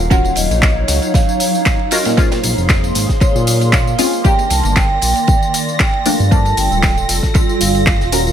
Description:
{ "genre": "deep house", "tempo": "116 BPM", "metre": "4/4", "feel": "swing 54% on 16ths", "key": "unclear", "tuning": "A4 = 440 Hz", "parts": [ { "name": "vibraphone with soft mallets", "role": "melody", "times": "0.0-8.3 s", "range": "C5 to A5", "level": "-20 LUFS", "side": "right 3 dB", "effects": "tape echo" }, { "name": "hollow soft pad", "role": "sustained chords", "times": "0.0-8.3 s", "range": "Eb3 to C6", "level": "-23 LUFS", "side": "left 1 dB", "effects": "ensemble chorus, sidechain pumping" }, { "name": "filtered dub chord stab", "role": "stabs", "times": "0.0-8.3 s", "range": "F3 to Bb4", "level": "-19 LUFS", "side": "left 2 dB", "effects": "phaser, analog chorus, sidechain pumping" }, { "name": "smooth synth bass", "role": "bass", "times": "0.0-8.3 s", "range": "D1 to Bb2", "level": "-17 LUFS", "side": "equal", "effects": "sidechain pumping" }, { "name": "granular cloud pad", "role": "texture", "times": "0.0-8.3 s", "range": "Eb3 to C6", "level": "-25 LUFS", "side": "right 2 dB", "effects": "built-in reverb, sidechain pumping" }, { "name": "deep reggae drum kit", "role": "drums", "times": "0.1-8.3 s", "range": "ride cymbal, snare drum", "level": "-29 LUFS", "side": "right 3 dB", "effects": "sidechain pumping on cymbals, high-pass filter on cymbals, high-pass filter on snare, high-pass filter on room" }, { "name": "electronic kick drum", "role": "drums", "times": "0.1-8.0 s", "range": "none", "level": "-14 LUFS", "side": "equal", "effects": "none" }, { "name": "punchy analog drum machine", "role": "drums", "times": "0.1-8.3 s", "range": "handclaps, hi-hat, tambourine", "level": "-20 LUFS", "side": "left 1 dB", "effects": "overdrive" }, { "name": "clear studio violin section", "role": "texture", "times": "4.2-8.3 s", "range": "Bb6", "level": "-27 LUFS", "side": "left 2 dB", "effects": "sidechain pumping" } ], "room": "studio reverb", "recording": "none", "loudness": "-12 LUFS", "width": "side -9 dB against mid", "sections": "0.0-8.3 A section", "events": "none", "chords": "0.0 Ebm9; 2.2 Bbm9; 4.2 Cm9; 6.1 Gm9" }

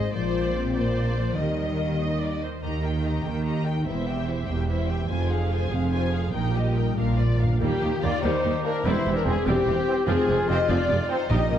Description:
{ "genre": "cinematic, heroic adventure film score", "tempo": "97 BPM (dotted quarters)", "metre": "6/8", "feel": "straight", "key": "Eb major", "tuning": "A4 = 439 Hz", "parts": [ { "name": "dark symphonic violin section", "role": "melody", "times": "0.0-11.6 s", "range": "G4 to Bb5", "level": "-34 LUFS", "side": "left 4 dB", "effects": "none" }, { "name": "warm symphonic violin section", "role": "second line", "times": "0.0-11.4 s", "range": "Bb3 to G5", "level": "-33 LUFS", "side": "left 3 dB", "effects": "none" }, { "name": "rich symphonic viola section", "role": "accompaniment", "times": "0.0-11.6 s", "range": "C3 to Eb5", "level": "-33 LUFS", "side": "right 2 dB", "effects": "none" }, { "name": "concert harp", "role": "arpeggios", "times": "0.0-11.6 s", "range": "F2 to C6", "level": "-33 LUFS", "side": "left 7 dB", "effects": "none" }, { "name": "warm French horn section", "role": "sustained chords", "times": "0.1-2.4, 7.6-11.4 s", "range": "F3 to Eb5", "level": "-28 LUFS", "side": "left 3 dB", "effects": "none" }, { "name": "rich studio cello section", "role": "bass", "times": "0.1-11.6 s", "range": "Eb2 to Eb3", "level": "-28 LUFS", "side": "right 2 dB", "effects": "none" }, { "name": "rich symphonic double bass section", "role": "bass", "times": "0.1-11.6 s", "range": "E1 to Eb2", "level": "-28 LUFS", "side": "right 2 dB", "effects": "none" }, { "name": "timpani", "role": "percussion", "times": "7.0-7.6, 11.3-11.6 s", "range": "Bb2", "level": "-27 LUFS", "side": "equal", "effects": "none" }, { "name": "concert flute", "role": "second line", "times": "7.6-11.6 s", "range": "G4 to Eb5", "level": "-32 LUFS", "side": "equal", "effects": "none" }, { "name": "mellow tuba", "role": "bass", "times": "7.6-11.6 s", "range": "E1 to Eb2", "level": "-30 LUFS", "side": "right 3 dB", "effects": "none" }, { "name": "clear trombone section", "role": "sustained chords", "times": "8.0-11.2 s", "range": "Eb3 to C4", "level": "-34 LUFS", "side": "right 3 dB", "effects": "none" }, { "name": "warm oboe", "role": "second line", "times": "8.2-11.6 s", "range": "Eb4 to G4", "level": "-34 LUFS", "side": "right 1 dB", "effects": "none" } ], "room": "moderate scoring stage reverb, RT60 1.7 s", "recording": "dark, warm production", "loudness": "-22 LUFS", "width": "side -10 dB against mid", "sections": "0.0-2.6 A section; 2.6-7.6 B section; 7.6-11.6 A section", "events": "timpani fill 7.0-7.6", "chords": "0.1 Bbadd9; 1.4 Eb; 3.9 C/E; 5.1 Fm; 6.3 Eb/Bb; 7.0 Bb; 7.6 Eb; 8.9 C/E; 10.1 Fm" }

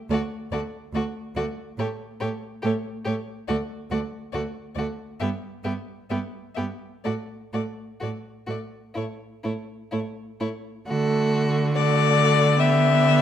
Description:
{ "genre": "classical, slow romantic movement for string quartet", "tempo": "62-72 BPM", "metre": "4/4", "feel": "rubato", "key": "D major", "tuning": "A4 = 441 Hz", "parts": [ { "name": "warm violin", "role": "melody", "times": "0.1-13.2 s", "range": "C#5 to E5", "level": "-25 LUFS", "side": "left 9 dB", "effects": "none" }, { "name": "rich violin", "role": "second line", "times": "0.1-13.2 s", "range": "E4 to G4", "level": "-34 LUFS", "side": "left 2 dB", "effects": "none" }, { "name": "warm viola", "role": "accompaniment", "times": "0.1-13.2 s", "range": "A3 to B3", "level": "-28 LUFS", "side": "right 3 dB", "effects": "none" }, { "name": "rich cello", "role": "bass", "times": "0.1-13.2 s", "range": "D2 to D3", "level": "-27 LUFS", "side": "right 2 dB", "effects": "none" } ], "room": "moderate recital hall reverb, RT60 1.3 s", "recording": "none", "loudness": "-23 LUFS", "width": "side -10 dB against mid", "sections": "0.0-10.9 A section; 10.9-13.2 B section", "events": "none", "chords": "0.1 D5; 1.8 N.C.; 3.5 D5; 5.2 Em/G (rootless); 7.0 N.C.; 10.9 D; 12.6 Em7/D" }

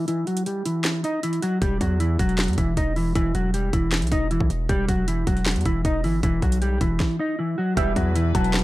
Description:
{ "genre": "hip hop, trap", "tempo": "156 BPM", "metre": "4/4", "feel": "half-time", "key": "E harmonic minor", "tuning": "A4 = 442 Hz", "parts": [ { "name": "mellow electric guitar", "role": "melody", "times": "0.0-8.6 s", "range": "E3 to D#5", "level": "-24 LUFS", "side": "equal", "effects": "low-pass filter" }, { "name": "trap drum kit", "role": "drums", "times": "0.1-8.6 s", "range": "handclaps, hi-hat, kick drum, snare drum", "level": "-25 LUFS", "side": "equal", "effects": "none" }, { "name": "hard-hitting 808-style bass", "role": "bass", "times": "1.6-8.6 s", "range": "E1 to E2", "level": "-24 LUFS", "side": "equal", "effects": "none" }, { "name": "warm concert grand piano", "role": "accompaniment", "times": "7.7-8.6 s", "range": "B2 to E4", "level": "-31 LUFS", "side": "left 1 dB", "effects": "none" }, { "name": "warbly dusty pluck", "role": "second line", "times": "7.8-8.6 s", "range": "E5 to A5", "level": "-29 LUFS", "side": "right 2 dB", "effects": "chorus, tape echo" }, { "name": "dark symphonic string section", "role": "sustained chords", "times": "7.8-8.6 s", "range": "E3 to B4", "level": "-35 LUFS", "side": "left 5 dB", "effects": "none" } ], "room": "digital ambience", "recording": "dry, gritty hardware recording", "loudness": "-20 LUFS", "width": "side -17 dB against mid", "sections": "0.0-7.8 A section", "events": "break 0.0-1.6; filter sweep on clean electric guitar 0.0-1.6; stop 7.0-7.8", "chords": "0.0 Emadd9" }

